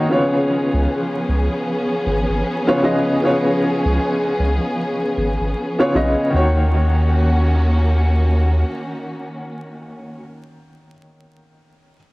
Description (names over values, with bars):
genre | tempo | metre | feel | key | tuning
trip hop | 77 BPM | 4/4 | swing 59% on 16ths | Eb minor | A4 = 440 Hz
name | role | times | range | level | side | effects
clear upright piano | accompaniment | 0.0-12.0 s | Db3 to Eb5 | -20 LUFS | equal | tremolo, cassette tape, tape echo
dark symphonic string section | sustained chords | 0.0-10.2 s | Eb3 to Ab4 | -22 LUFS | equal | cassette tape
round analog bass | bass | 0.7-8.6 s | Ab1 to Eb2 | -16 LUFS | equal | none
room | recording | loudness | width
digital ambience | home recording on cassette, vinyl crackle | -16 LUFS | side -21 dB against mid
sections
0.0-6.3 A section; 6.3-9.5 B section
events
none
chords
0.1 Db7; 6.3 Ebm7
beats
| 0.10 0.88 1.66 2.44 | 3.22 4.00 4.78 5.56 | 6.34 7.12 7.89 8.67